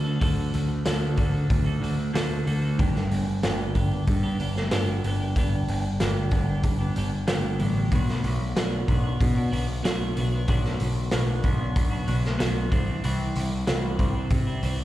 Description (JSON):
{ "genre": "quiet-loud alternative rock", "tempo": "94 BPM", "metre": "4/4", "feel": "straight", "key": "unclear", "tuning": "A4 = 436 Hz", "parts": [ { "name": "twelve-string electric guitar", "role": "arpeggios", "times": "0.0-14.8 s", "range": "G2 to A4", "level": "-30 LUFS", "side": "right 1 dB", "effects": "phaser, slapback echo" }, { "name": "growling picked electric bass", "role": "bass", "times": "0.0-14.8 s", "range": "G1 to C3", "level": "-26 LUFS", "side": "equal", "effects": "overdrive" }, { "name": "raw garage drum kit", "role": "drums", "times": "0.2-14.8 s", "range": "hi-hat, kick drum, snare drum", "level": "-26 LUFS", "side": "equal", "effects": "none" } ], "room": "studio ambience", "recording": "live gig heard through the venue's PA, recital hall reverb", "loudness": "-22 LUFS", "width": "side -14 dB against mid", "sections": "0.0-14.8 A section", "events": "none", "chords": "0.0 D; 2.8 G; 7.9 Bm; 12.7 C", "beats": "| 0.22 0.86 1.51 2.15 | 2.79 3.44 4.08 4.72 | 5.36 6.00 6.64 7.29 | 7.93 8.57 9.21 9.85 | 10.48 11.12 11.76 12.40 | 13.04 13.68 14.32" }